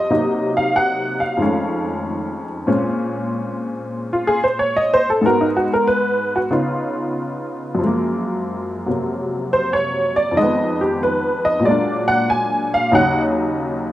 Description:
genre	solo jazz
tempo	94 BPM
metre	4/4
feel	swing 69% on 8ths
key	Bb minor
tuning	A4 = 440 Hz
part	honky-tonk upright piano	solo	0.0-13.9 s	Eb2 to Ab5	-17 LUFS	equal	none
room	light reverb, small room ambience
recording	rough home demo mix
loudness	-17 LUFS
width	side -14 dB against mid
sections	0.0-2.7 A section; 2.7-13.9 B section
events	honky-tonk piano solo 2.7-13.9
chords	0.1 Cm7b5; 1.4 F7alt; 2.7 Bbm9; 5.2 Abm7; 6.5 Db9; 7.8 Gbmaj9; 10.4 Fm7b5; 11.6 Bbaug7; 12.9 Ebm7

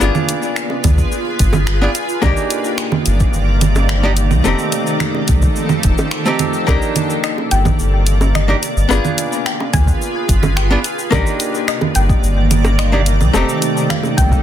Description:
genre	sunset chillout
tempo	108 BPM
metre	4/4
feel	straight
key	C minor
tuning	A4 = 437 Hz
part	archtop guitar, miked and amplified	accompaniment	0.0-14.4 s	A3 to Ab4	-20 LUFS	left 1 dB	auto-pan, ping-pong delay
part	shimmering ambient pad	sustained chords	0.0-14.4 s	C3 to D5	-21 LUFS	right 1 dB	chorus, built-in reverb
part	warm sub bass	bass	0.0-14.4 s	F1 to D2	-15 LUFS	equal	none
part	smooth R&B drum kit	drums	0.0-14.4 s	congas, finger snaps, hi-hat, shaker	-20 LUFS	right 4 dB	soft clipping on snare
part	bongos	percussion	0.0-14.1 s	none	-23 LUFS	right 1 dB	none
part	electronic kick drum	drums	0.8-14.4 s	none	-17 LUFS	equal	overdrive
part	soft round pluck	arpeggios	6.7-14.4 s	A4 to Ab5	-25 LUFS	left 5 dB	chorus, ping-pong delay
room	little or no reverb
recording	dense, heavily limited modern master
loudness	-13 LUFS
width	side -10 dB against mid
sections	0.0-14.4 A section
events	none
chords	0.0 G7b9; 2.0 Cm9; 4.5 F9; 6.7 Cm9; 8.6 G7b9; 10.8 Cm9; 13.3 F9

